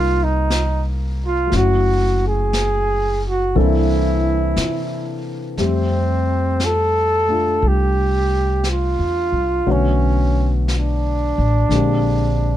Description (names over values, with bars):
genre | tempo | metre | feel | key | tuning
jazz | 59 BPM | 4/4 | swing 69% on 8ths | unclear | A4 = 440 Hz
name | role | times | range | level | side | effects
breathy flugelhorn | melody | 0.0-12.6 s | C4 to A4 | -20 LUFS | right 2 dB | none
warm upright piano | accompaniment | 0.0-12.6 s | D3 to E5 | -24 LUFS | left 3 dB | none
upright bass | bass | 0.0-12.6 s | Gb1 to C3 | -19 LUFS | equal | none
jazz brush drum kit | drums | 0.5-12.6 s | brushed snare drum, hi-hat, snare drum | -30 LUFS | left 2 dB | none
room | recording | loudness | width
little or no reverb | tape saturation | -16 LUFS | side -12 dB against mid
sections
0.0-5.6 A section; 5.6-12.6 B section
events
none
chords
0.0 Fm7; 1.5 Gbm7; 3.6 C13; 5.6 Fmaj9; 9.7 Bm9; 11.7 Bb13